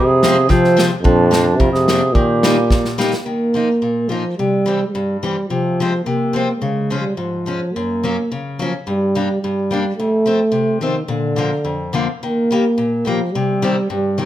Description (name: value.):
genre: alpine folk, alpine dance band.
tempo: 108 BPM.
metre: 2/4.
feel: straight.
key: Eb major.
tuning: A4 = 440 Hz.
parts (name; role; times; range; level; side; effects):
mellow euphonium; melody; 0.0-14.3 s; F2 to Bb3; -17 LUFS; right 1 dB; none.
mellow clarinet; second line; 0.0-3.0 s; D4 to C5; -20 LUFS; right 5 dB; none.
picked steel-string acoustic guitar; accompaniment; 0.0-14.3 s; F2 to Eb4; -21 LUFS; left 4 dB; none.
natural country drum kit; drums; 0.2-3.3 s; kick drum, snare drum; -18 LUFS; equal; none.
room: light reverb.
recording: close, detailed microphones.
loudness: -15 LUFS.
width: side -12 dB against mid.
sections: 0.0-3.3 A section; 3.3-14.3 B section.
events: drum fill 2.7-3.3.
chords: 0.0 Fm; 1.0 Bb; 2.1 Eb; 3.3 Ebsus2; 4.4 C; 5.5 Fm/C; 6.6 Db; 7.7 Gb; 8.9 Gm; 10.0 F; 11.1 Bb; 12.2 Eb; 13.3 Cm.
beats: 0.50 | 1.04 1.59 | 2.15 2.70 | 3.26 3.82 | 4.38 4.94 | 5.50 6.06 | 6.62 7.18 | 7.74 8.30 | 8.86 9.42 | 9.97 10.53 | 11.09 11.65 | 12.22 12.78 | 13.34 13.89.